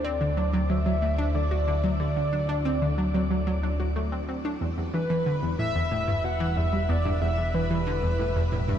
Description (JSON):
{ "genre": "ambient, sequencer-driven space music", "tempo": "92 BPM", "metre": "4/4", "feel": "straight", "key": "unclear", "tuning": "A4 = 440 Hz", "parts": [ { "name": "pulse-width lead", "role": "melody", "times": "0.0-8.8 s", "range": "B4 to F#5", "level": "-30 LUFS", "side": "equal", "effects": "chorus, ping-pong delay" }, { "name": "string machine, full ensemble", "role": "sustained chords", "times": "0.0-8.8 s", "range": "G3 to E5", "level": "-39 LUFS", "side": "equal", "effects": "phaser, ensemble chorus" }, { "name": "analog pluck", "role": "riff", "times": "0.0-8.7 s", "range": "E2 to F#4", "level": "-27 LUFS", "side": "equal", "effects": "chorus, ping-pong delay" }, { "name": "fat analog bass", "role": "bass", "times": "0.0-8.8 s", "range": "E1 to D2", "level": "-28 LUFS", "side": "equal", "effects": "none" } ], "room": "moderate shimmer reverb, RT60 8.6 s", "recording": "dark, warm production", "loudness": "-24 LUFS", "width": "side -9 dB against mid", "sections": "0.0-8.8 A section", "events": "none", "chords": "0.0 Dadd9; 4.6 Em", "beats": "0.04 0.70 1.35 | 2.00 2.65 3.31 3.96 | 4.61 5.26 5.91 6.57 | 7.22 7.87 8.52" }